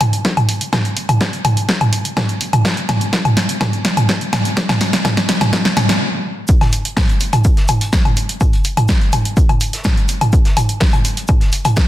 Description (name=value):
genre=techno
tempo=125 BPM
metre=4/4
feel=straight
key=none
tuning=none
part: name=punchy analog drum machine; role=drums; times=0.0-11.9 s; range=hi-hat, snare drum, toms, woodblock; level=-15 LUFS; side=equal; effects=sidechain pumping on hats, sidechain pumping on toms, sidechain pumping on perc
part: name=electronic kick drum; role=drums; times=0.2-11.9 s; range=none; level=-15 LUFS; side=equal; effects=high-pass filter on kick
part: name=crunchy breakbeat drum kit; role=drums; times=6.5-11.9 s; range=hi-hat, shaker, snare drum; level=-30 LUFS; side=equal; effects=high-pass filter on hats, high-pass filter on snare, high-pass filter on perc, high-pass filter on room
room=moderate recital hall reverb, RT60 1.3 s, small room ambience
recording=dense, heavily limited modern master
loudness=-13 LUFS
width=side -14 dB against mid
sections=0.0-6.5 A section; 6.5-11.9 B section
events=build-up 0.0-6.5; drum fill 0.0-6.0; stop 6.0-6.5; drop 6.5-11.9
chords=none